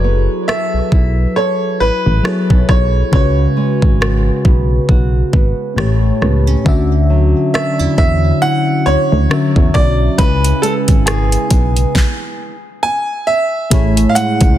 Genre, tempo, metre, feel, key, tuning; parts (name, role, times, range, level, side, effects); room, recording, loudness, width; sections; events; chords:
contemporary R&B; 68 BPM; 4/4; swing 58% on 16ths; A4 = 437 Hz
clear grand piano; melody; 0.0-14.6 s; G#4 to G#5; -18 LUFS; right 1 dB; ping-pong delay
mellow FM electric piano; accompaniment; 0.0-14.6 s; A2 to E5; -18 LUFS; left 4 dB; chorus
nylon-string guitar; arpeggios; 0.0-14.6 s; A2 to A4; -20 LUFS; right 6 dB; ping-pong delay
solid FM bass; bass; 0.0-14.6 s; F#1 to E2; -14 LUFS; equal
smooth R&B drum kit; drums; 0.5-14.6 s; hi-hat, kick drum, rim click, snare drum; -14 LUFS; equal; soft clipping on snare
digital ambience; dense, heavily limited modern master; -11 LUFS; side -12 dB against mid
0.0-13.7 A section
stop 12.0-13.7
0.0 F#m11; 3.1 C#7sus4; 5.8 A7; 6.7 Dmaj9; 10.2 C#m7; 13.7 Amaj7